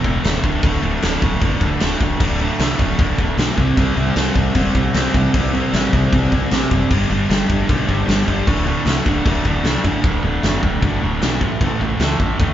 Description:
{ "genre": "punk rock", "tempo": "153 BPM", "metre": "4/4", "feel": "straight", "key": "unclear", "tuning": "A4 = 441 Hz", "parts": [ { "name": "crunchy overdriven guitar", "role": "riff", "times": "0.0-12.5 s", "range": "D2 to C4", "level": "-19 LUFS", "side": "equal", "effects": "none" }, { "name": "woody fretless electric bass", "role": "bass", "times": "0.0-12.5 s", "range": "D1 to D2", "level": "-22 LUFS", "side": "equal", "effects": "none" }, { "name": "big rock drum kit", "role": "drums", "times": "0.0-12.5 s", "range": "crash cymbal, kick drum, snare drum", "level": "-19 LUFS", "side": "equal", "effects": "none" } ], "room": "light reverb", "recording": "band playing live in one room, nothing above 7.5 kHz", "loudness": "-15 LUFS", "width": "side -11 dB against mid", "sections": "0.0-10.0 A section; 10.0-12.5 B section", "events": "none", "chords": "0.4 D5; 3.6 C5; 6.9 G5; 8.5 D5; 11.4 A", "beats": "0.24 | 0.63 1.02 1.42 1.81 | 2.20 2.59 2.98 3.38 | 3.77 4.16 4.55 4.94 | 5.33 5.73 6.12 6.51 | 6.90 7.30 7.69 8.08 | 8.47 8.87 9.26 9.65 | 10.04 10.43 10.83 11.22 | 11.61 12.01 12.40" }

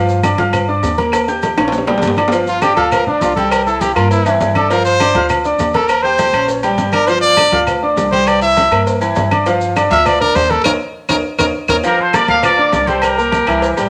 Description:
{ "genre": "latin, salsa", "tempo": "202 BPM", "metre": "4/4", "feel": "straight", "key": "unclear", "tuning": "A4 = 443 Hz", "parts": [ { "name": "bright concert grand piano", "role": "accompaniment", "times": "0.0-13.9 s", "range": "E3 to G6", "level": "-20 LUFS", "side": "equal", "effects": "none" }, { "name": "upright bass", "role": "bass", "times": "0.0-13.9 s", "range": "G1 to G2", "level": "-25 LUFS", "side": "equal", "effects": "none" }, { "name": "congas", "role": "percussion", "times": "0.1-13.9 s", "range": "none", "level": "-27 LUFS", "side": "equal", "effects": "none" }, { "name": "maracas", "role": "percussion", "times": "0.1-13.9 s", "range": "none", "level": "-37 LUFS", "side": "equal", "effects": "none" }, { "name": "claves", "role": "percussion", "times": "0.2-13.6 s", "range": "none", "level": "-28 LUFS", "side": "equal", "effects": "none" }, { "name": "cowbell and bongos", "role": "percussion", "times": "0.2-13.9 s", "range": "none", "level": "-26 LUFS", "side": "equal", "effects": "none" }, { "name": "timbales and agogo bells", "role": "percussion", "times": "0.2-13.9 s", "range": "none", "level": "-21 LUFS", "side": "equal", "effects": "none" }, { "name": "bright trumpet", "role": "melody", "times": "2.5-11.8 s", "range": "D4 to E5", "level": "-17 LUFS", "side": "equal", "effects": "none" }, { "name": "clear trumpet section", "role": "melody", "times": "11.9-13.9 s", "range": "G4 to F5", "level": "-17 LUFS", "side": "equal", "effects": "none" } ], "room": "moderate studio reverb, RT60 0.9 s", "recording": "none", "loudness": "-14 LUFS", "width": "mono", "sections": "0.0-2.3 A section; 2.3-11.8 B section; 11.8-13.9 C section", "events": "drum fill 1.1-2.3, 10.7-11.8; trumpet solo 2.3-11.8; band accent 10.7-11.8", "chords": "0.0 Gm7; 1.1 Eb7; 2.3 G5; 3.5 C7; 4.7 Gm7; 5.9 Eb7; 7.1 G5; 8.3 C7; 9.5 Gm7; 10.7 Eb5; 11.8 Gm7; 13.0 C7", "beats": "0.24 0.54 0.83 | 1.13 1.43 1.73 2.03 | 2.32 2.62 2.92 3.22 | 3.51 3.81 4.11 4.41 | 4.70 5.00 5.30 5.59 | 5.89 6.19 6.49 6.78 | 7.08 7.38 7.68 7.97 | 8.27 8.57 8.87 9.16 | 9.46 9.76 10.05 10.35 | 10.65 10.95 11.24 11.54 | 11.84 12.14 12.43 12.73 | 13.03 13.32 13.62" }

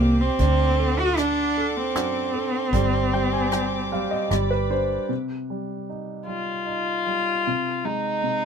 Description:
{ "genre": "acoustic folk-pop ballad", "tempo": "76 BPM", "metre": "3/4", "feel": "straight", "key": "C minor from 5.1 s", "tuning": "A4 = 439 Hz", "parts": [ { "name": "warm cello", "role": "melody", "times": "0.0-4.3 s", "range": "Bb3 to F#4", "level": "-23 LUFS", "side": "right 1 dB", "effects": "none" }, { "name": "clear upright piano", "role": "accompaniment", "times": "0.0-8.4 s", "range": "C3 to Ab5", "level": "-27 LUFS", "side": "right 1 dB", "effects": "none" }, { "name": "warm studio string section", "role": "sustained chords", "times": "0.0-5.1 s", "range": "G4 to D6", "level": "-34 LUFS", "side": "left 3 dB", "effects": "none" }, { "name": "vintage muted fingered electric bass", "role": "bass", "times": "0.0-5.0 s", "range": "G1 to F#2", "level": "-25 LUFS", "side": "equal", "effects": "none" }, { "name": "soft brush drum kit", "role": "drums", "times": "0.4-4.5 s", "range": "hi-hat, kick drum, rim click", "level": "-28 LUFS", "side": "equal", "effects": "none" }, { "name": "dark violin", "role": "second line", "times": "6.3-8.4 s", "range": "Eb4 to F4", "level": "-24 LUFS", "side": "left 3 dB", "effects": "none" } ], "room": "light reverb", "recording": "minimal, uncompressed stereo recording", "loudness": "-21 LUFS", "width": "side -7 dB against mid", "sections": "0.0-5.1 A section; 5.1-8.4 B section", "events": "violin solo 5.1-8.4", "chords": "0.4 D7; 2.7 Gsus4; 4.3 G; 5.1 Cm; 7.5 Fm7/C", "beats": "| 0.40 1.18 1.96 | 2.74 3.52 4.31 | 5.10 5.89 6.68 | 7.46 8.25" }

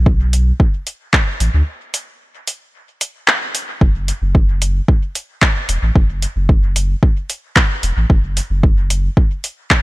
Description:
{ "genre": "dub techno", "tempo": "112 BPM", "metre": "4/4", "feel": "straight", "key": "F# minor", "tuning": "A4 = 440 Hz", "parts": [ { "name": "warm sub bass", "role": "bass", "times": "0.0-9.1 s", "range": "E1 to D2", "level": "-16 LUFS", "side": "equal", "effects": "sidechain pumping" }, { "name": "electronic kick drum", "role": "drums", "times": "0.1-9.8 s", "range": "none", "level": "-13 LUFS", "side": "equal", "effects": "none" }, { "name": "deep house drum kit", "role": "drums", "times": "0.3-9.8 s", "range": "handclaps, hi-hat", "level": "-17 LUFS", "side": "equal", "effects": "dub echo" } ], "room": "little or no reverb", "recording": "none", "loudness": "-14 LUFS", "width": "side -20 dB against mid", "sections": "0.0-9.8 A section", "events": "break 1.7-3.8", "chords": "none", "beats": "0.06 0.60 1.14 | 1.67 2.21 2.74 3.28 | 3.81 4.35 4.88 5.42 | 5.96 6.49 7.03 7.56 | 8.10 8.63 9.17 9.71" }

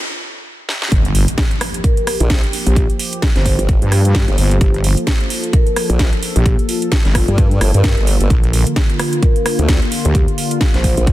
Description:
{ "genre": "bass house", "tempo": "130 BPM", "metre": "4/4", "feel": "swing 57% on 16ths", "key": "G minor", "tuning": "A4 = 441 Hz", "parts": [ { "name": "house drum kit", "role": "drums", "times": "0.7-11.1 s", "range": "hi-hat, rim click, snare drum", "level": "-22 LUFS", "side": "right 1 dB", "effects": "none" }, { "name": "sweeping resonant pad", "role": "sustained chords", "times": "0.9-11.1 s", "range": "D3 to A4", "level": "-23 LUFS", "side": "left 1 dB", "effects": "chorus, phaser, sidechain pumping" }, { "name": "wobble bass", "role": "bass", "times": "0.9-11.0 s", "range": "G1 to G2", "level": "-14 LUFS", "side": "equal", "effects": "chorus, overdrive, sidechain pumping" }, { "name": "electronic kick drum", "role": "drums", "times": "0.9-11.1 s", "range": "none", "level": "-14 LUFS", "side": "equal", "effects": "none" }, { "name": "impact", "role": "sound effects", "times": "1.0-2.8 s", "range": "none", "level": "-28 LUFS", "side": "equal", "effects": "none" }, { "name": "vibraphone with soft mallets", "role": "melody", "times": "1.8-10.9 s", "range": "F4 to C5", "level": "-25 LUFS", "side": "left 1 dB", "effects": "digital delay" }, { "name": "formant-sweep wobble bass", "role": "bass", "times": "2.2-11.1 s", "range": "G1 to G2", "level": "-15 LUFS", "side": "equal", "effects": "chorus, tube saturation, sidechain pumping" } ], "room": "little or no reverb", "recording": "dense, heavily limited modern master, high-pass filter", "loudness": "-12 LUFS", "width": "side -15 dB against mid", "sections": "0.9-11.1 A section", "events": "break 0.0-0.9; drum fill 0.7; drop 0.9-11.1; impact 0.9-2.8", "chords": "0.0 N.C.; 0.9 Gm7; 8.3 Bb", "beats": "0.46 | 0.92 1.38 1.84 2.30 | 2.76 3.23 3.69 4.15 | 4.61 5.07 5.53 6.00 | 6.46 6.92 7.38 7.84 | 8.30 8.76 9.23 9.69 | 10.15 10.61 11.07" }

